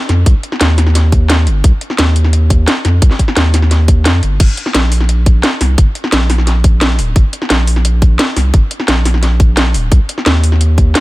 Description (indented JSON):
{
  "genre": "liquid drum and bass",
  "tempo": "174 BPM",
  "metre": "4/4",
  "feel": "straight",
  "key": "unclear",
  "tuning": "A4 = 443 Hz",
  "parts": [
    { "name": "saturated sub bass", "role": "bass", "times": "0.1-10.9 s", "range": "D1 to F2", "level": "-11 LUFS", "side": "equal", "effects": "none" },
    { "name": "drum and bass drum kit", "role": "drums", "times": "0.1-11.0 s", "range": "crash cymbal, hi-hat, snare drum", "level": "-15 LUFS", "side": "equal", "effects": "none" },
    { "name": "electronic kick drum", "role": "drums", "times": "0.3-10.8 s", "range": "none", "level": "-9 LUFS", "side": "equal", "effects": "none" }
  ],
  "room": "little or no reverb",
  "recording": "none",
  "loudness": "-9 LUFS",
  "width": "side -19 dB against mid",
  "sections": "0.0-11.0 A section",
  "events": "none",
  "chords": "none"
}